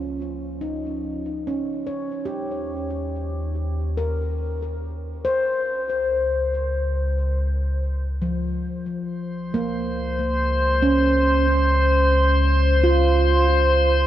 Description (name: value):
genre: ambient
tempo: free time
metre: none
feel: none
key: Db lydian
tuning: A4 = 440 Hz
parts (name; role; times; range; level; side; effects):
- handpan; arpeggios; 0.0-14.1 s; F3 to Db5; -24 LUFS; right 1 dB; ping-pong delay
- round analog bass; bass; 0.0-14.1 s; Db2 to Eb2; -23 LUFS; equal; none
- drifting glass-harmonics texture; texture; 9.6-14.1 s; C5 to C6; -20 LUFS; left 1 dB; chorus, built-in reverb
room: moderate huge ambient reverb, RT60 9.5 s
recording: worn, warbling old tape, cassette tape, warbly pitch drift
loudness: -20 LUFS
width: side -12 dB against mid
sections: 0.0-14.1 A section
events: fade-in on handpan 0.0-14.1; fade-in on analog synth bass 0.0-14.1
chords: 0.0 Db; 2.2 Eb; 5.6 Dbmaj7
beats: free time